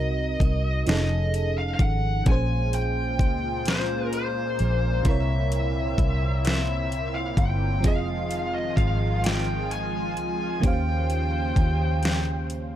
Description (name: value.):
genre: slow six-eight R&B.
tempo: 43 BPM (dotted quarters).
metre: 6/8.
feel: straight.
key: unclear.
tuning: A4 = 440 Hz.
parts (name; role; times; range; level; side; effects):
high-gain lead guitar; melody; 0.0-12.5 s; C5 to Ab5; -30 LUFS; left 2 dB; distortion.
FM electric piano; accompaniment; 0.0-12.8 s; Bb2 to F5; -31 LUFS; right 4 dB; chorus.
vintage muted fingered electric bass; bass; 0.0-12.8 s; F1 to Eb2; -26 LUFS; equal; none.
smooth R&B drum kit; drums; 0.4-12.7 s; hi-hat, kick drum, snare drum; -23 LUFS; equal; none.
lush unison pad; sustained chords; 2.2-12.8 s; Bb2 to C5; -33 LUFS; equal; chorus, phaser.
room: digital ambience.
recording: dark, warm production.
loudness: -22 LUFS.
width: side -11 dB against mid.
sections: 0.0-12.8 A section.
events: none.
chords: 0.0 Cm7b5; 0.9 F7alt; 2.3 Bbm7; 5.1 C7b9; 7.8 Fm7; 10.6 Eb13.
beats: 0.87 | 2.26 3.66 | 5.05 6.45 | 7.84 9.24 | 10.63 12.03.